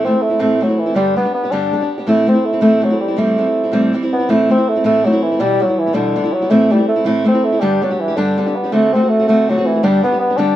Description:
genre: celtic folk.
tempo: 108 BPM (dotted quarters).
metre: 6/8.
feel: straight.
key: A dorian.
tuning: A4 = 438 Hz.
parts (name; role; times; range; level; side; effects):
mellow bassoon; melody; 0.0-10.6 s; D3 to D4; -16 LUFS; equal; none.
picked steel-string acoustic guitar; accompaniment; 0.0-10.6 s; E2 to G4; -15 LUFS; equal; none.
room: light reverb.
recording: minimal, uncompressed stereo recording.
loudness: -12 LUFS.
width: side -13 dB against mid.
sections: 0.0-4.3 A section; 4.3-10.6 A section.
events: none.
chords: 0.0 Am; 1.0 G; 2.1 Am; 3.2 Am7; 4.3 Am; 5.4 Em; 6.5 Am; 7.6 G; 8.7 D7; 9.8 G.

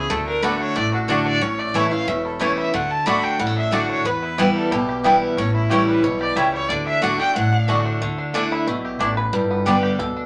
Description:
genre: bluegrass.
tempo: 182 BPM.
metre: 4/4.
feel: straight.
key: D major.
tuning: A4 = 440 Hz.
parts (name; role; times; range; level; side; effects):
bluegrass banjo; melody; 0.0-10.3 s; G3 to B4; -32 LUFS; equal; none.
bright fiddle; melody; 0.0-7.8 s; E4 to B5; -26 LUFS; equal; none.
picked steel-string acoustic guitar; accompaniment; 0.0-10.3 s; E2 to G4; -23 LUFS; equal; none.
upright bass; bass; 0.0-10.3 s; E1 to E2; -34 LUFS; equal; none.
mandolin; stabs; 0.4-9.8 s; A3 to A5; -23 LUFS; equal; none.
room: wet studio ambience, RT60 0.5 s.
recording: none.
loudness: -20 LUFS.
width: mono.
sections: 0.0-8.0 A section; 8.0-10.3 B section.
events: five-string banjo solo 8.0-10.3.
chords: 0.1 D; 1.4 A; 2.7 D; 4.1 Em; 5.4 A7; 6.7 D; 8.0 Dsus2; 9.3 Gadd9.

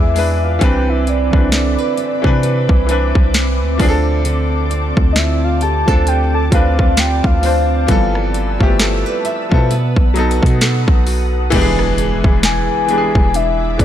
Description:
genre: contemporary R&B.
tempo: 66 BPM.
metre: 4/4.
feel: swing 58% on 16ths.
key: unclear.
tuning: A4 = 440 Hz.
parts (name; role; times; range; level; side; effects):
soft octave-layered synth lead; melody; 0.0-13.8 s; D5 to A5; -20 LUFS; left 2 dB; chorus, phaser, digital delay.
clear grand piano; accompaniment; 0.0-13.8 s; D3 to C5; -20 LUFS; left 3 dB; none.
ethereal airy pad; sustained chords; 0.0-13.8 s; C4 to E6; -25 LUFS; left 2 dB; ensemble chorus, built-in reverb.
nylon-string guitar; arpeggios; 0.0-13.8 s; D3 to E5; -23 LUFS; right 7 dB; digital delay.
warm 808-style bass; bass; 0.0-13.8 s; E1 to C3; -17 LUFS; equal; none.
trap drum kit; drums; 0.2-13.8 s; crash cymbal, hi-hat, kick drum, rim click, snare drum; -15 LUFS; equal; overdrive.
impact; sound effects; 11.6-13.8 s; none; -25 LUFS; equal; none.
room: little or no reverb.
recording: none.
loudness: -12 LUFS.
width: side -11 dB against mid.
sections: 0.0-11.5 A section; 11.5-13.8 B section.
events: impact 11.5-13.8.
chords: 0.0 E7; 0.6 Cmaj9; 3.8 Dm7; 7.9 G13; 9.7 B7; 11.5 E7.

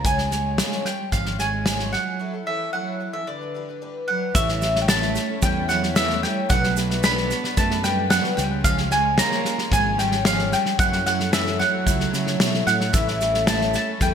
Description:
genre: indie folk with a building arrangement.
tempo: 112 BPM.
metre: 4/4.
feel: straight.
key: unclear.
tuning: A4 = 440 Hz.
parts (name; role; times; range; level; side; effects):
mandolin; melody; 0.0-14.1 s; D5 to B5; -24 LUFS; equal; ping-pong delay.
warm cello; second line; 0.0-14.1 s; D3 to B3; -29 LUFS; right 7 dB; ping-pong delay.
picked twelve-string acoustic guitar; accompaniment; 0.0-14.1 s; A2 to C#5; -31 LUFS; left 6 dB; lush chorus.
fingered electric bass; bass; 0.0-14.1 s; G#1 to C#3; -27 LUFS; equal; none.
natural country drum kit; drums; 0.0-14.1 s; kick drum, snare drum; -23 LUFS; left 1 dB; gated reverb.
tube shaker; percussion; 0.1-14.1 s; none; -33 LUFS; right 14 dB; none.
felt-muted upright piano; accompaniment; 4.3-14.1 s; F#1 to F#5; -35 LUFS; left 5 dB; none.
warm chamber string section; sustained chords; 4.3-14.1 s; G#3 to C#5; -33 LUFS; left 1 dB; none.
room: moderate plate reverb, RT60 1.6 s, small room ambience.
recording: bright 1980s-style digital production.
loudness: -19 LUFS.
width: side -7 dB against mid.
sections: 0.0-4.4 A section; 4.4-14.1 A section.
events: break 2.2-4.4.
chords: 0.0 C#; 2.2 F#m7; 3.3 G; 4.4 A; 6.5 Bm7; 8.4 C#; 10.8 F#m7; 12.9 A.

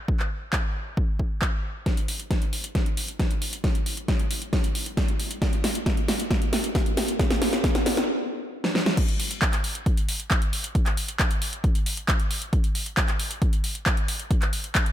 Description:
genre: trance.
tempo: 135 BPM.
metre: 4/4.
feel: straight.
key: none.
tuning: none.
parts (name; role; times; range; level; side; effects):
electronic kick drum; drums; 0.1-14.8 s; none; -24 LUFS; equal; overdrive.
big-room dance drum kit; drums; 0.2-14.9 s; crash cymbal, handclaps, hi-hat, snare drum; -26 LUFS; equal; none.
room: light reverb.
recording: none.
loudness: -23 LUFS.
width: side -11 dB against mid.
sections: 0.0-1.9 A section; 1.9-9.0 B section; 9.0-14.9 C section.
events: build-up 1.9-9.0; drum fill 1.9-8.1, 8.6-9.0; stop 8.1-9.0; drop 9.0-14.9.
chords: none.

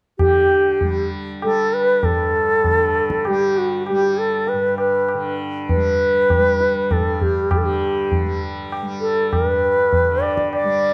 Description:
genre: indian classical, Hindustani.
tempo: 99 BPM.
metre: 3/4.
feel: straight.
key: G raga hamsadhwani.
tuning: A4 = 441 Hz.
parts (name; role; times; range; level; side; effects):
bright bansuri; melody; 0.2-10.9 s; F#4 to D5; -19 LUFS; equal; none.
tanpura; drone; 0.2-10.9 s; G2 to G3; -30 LUFS; equal; none.
tabla; percussion; 0.2-10.8 s; none; -26 LUFS; equal; none.
room: moderate recital hall reverb, RT60 1.5 s.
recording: none.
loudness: -19 LUFS.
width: mono.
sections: 0.2-10.9 A section.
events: none.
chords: none.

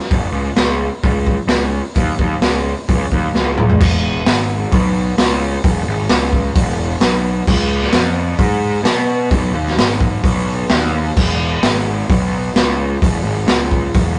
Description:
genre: garage rock duo or trio.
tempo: 130 BPM.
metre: 4/4.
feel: straight.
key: unclear.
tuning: A4 = 439 Hz.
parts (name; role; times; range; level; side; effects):
raw garage drum kit; drums; 0.0-14.1 s; crash cymbal, hi-hat, kick drum, snare drum, toms; -18 LUFS; equal; none.
fuzz picked electric bass; bass; 0.1-14.2 s; E1 to B2; -20 LUFS; equal; overdrive.
room: light reverb.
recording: rough rehearsal-room recording, warm saturation, nothing above 10.4 kHz.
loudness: -16 LUFS.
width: mono.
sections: 0.0-3.8 A section; 3.8-14.2 B section.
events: drum fill 3.3-3.8.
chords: none.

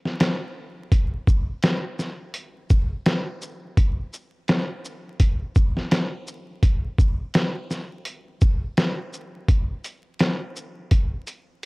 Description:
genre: hip hop.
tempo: 84 BPM.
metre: 4/4.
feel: swing 56% on 16ths.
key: none.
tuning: none.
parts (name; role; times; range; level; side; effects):
trip hop sampler-style drum kit; drums; 0.1-11.7 s; hi-hat, kick drum, shaker, snare drum; -20 LUFS; equal; none.
room: little or no reverb.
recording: worn, warbling old tape, cassette tape, vinyl crackle, warbly pitch drift.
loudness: -21 LUFS.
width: side -29 dB against mid.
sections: 0.9-11.7 A section.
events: break 0.0-0.9; drum fill 10.9-11.7.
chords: none.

